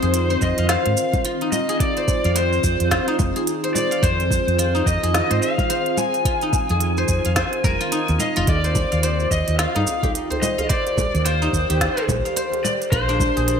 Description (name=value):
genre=organic downtempo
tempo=108 BPM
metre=4/4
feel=swing 60% on 16ths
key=F dorian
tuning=A4 = 440 Hz
part: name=overdriven slide guitar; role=melody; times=0.0-13.6 s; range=C5 to Ab5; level=-24 LUFS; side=left 1 dB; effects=digital delay
part: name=ethereal airy pad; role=sustained chords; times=0.0-13.6 s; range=D3 to D5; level=-27 LUFS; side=right 1 dB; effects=ensemble chorus, built-in reverb, sidechain pumping
part: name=guzheng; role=arpeggios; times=0.0-13.6 s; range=D4 to F5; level=-25 LUFS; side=left 2 dB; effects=digital delay
part: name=woody fretless electric bass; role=bass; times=0.0-13.6 s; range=F1 to Ab2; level=-22 LUFS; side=equal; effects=wide subtle chorus
part: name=organic electronic drum kit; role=drums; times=0.0-13.6 s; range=congas, hi-hat, shaker, snare drum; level=-26 LUFS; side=equal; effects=overdrive, gated reverb
part: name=electronic kick drum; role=drums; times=0.4-13.3 s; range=none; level=-23 LUFS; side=equal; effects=overdrive
part: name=djembe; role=percussion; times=8.5-13.3 s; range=none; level=-32 LUFS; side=right 4 dB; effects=none
room=moderate lush hall reverb, RT60 1.5 s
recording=bright 1980s-style digital production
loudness=-18 LUFS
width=side -7 dB against mid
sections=0.0-13.6 A section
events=none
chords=0.0 Fm7; 8.5 Ebmaj7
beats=0.14 0.70 1.25 | 1.81 2.37 2.92 3.48 | 4.03 4.59 5.14 5.70 | 6.25 6.81 7.37 7.92 | 8.48 9.03 9.59 10.14 | 10.70 11.26 11.81 12.37 | 12.92 13.48